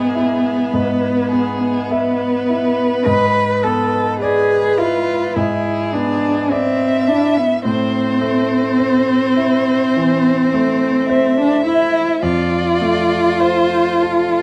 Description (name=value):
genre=classical, slow romantic movement for piano trio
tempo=52 BPM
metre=4/4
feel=rubato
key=unclear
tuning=A4 = 440 Hz
part: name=rich violin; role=melody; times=0.0-14.4 s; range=G#4 to E5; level=-25 LUFS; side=equal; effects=none
part: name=rich cello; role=second line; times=0.0-14.4 s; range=B3 to B4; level=-18 LUFS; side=equal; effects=none
part: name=clear grand piano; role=accompaniment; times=0.0-14.4 s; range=F2 to E5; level=-23 LUFS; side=equal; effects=none
room=moderate studio reverb, RT60 0.6 s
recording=dark, warm production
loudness=-16 LUFS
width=mono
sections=0.0-14.4 A section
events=none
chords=0.0 E/G#; 3.1 E7/G#; 7.7 Am; 12.2 F